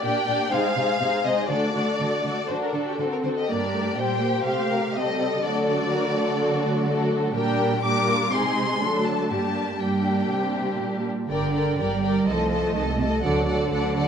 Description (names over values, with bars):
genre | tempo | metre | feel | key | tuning
quick classical-period movement for string orchestra | 123 BPM | 4/4 | straight | G minor | A4 = 438 Hz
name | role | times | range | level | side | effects
warm symphonic violin section | melody | 0.0-14.1 s | G4 to D6 | -27 LUFS | left 3 dB | none
warm symphonic violin section | second line | 0.0-14.1 s | D4 to Eb5 | -27 LUFS | left 2 dB | none
warm symphonic viola section | accompaniment | 0.0-14.1 s | F#3 to Eb4 | -28 LUFS | right 2 dB | none
warm symphonic cello section | bass | 0.0-14.1 s | G2 to G3 | -28 LUFS | right 3 dB | none
rich studio double bass section | bass | 11.3-14.1 s | G1 to D2 | -29 LUFS | right 3 dB | none
room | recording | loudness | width
moderate scoring stage reverb, RT60 1.5 s | none | -21 LUFS | side -7 dB against mid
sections
0.0-11.3 A section; 11.3-14.1 A section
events
none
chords
0.0 Gm/Bb; 0.5 Ab/C; 1.5 D; 3.5 Gm; 4.5 Adim/C; 5.4 D; 7.3 Gm/Bb; 8.3 Ab/C; 8.8 D7; 9.3 Gm; 12.3 Adim/C; 13.2 D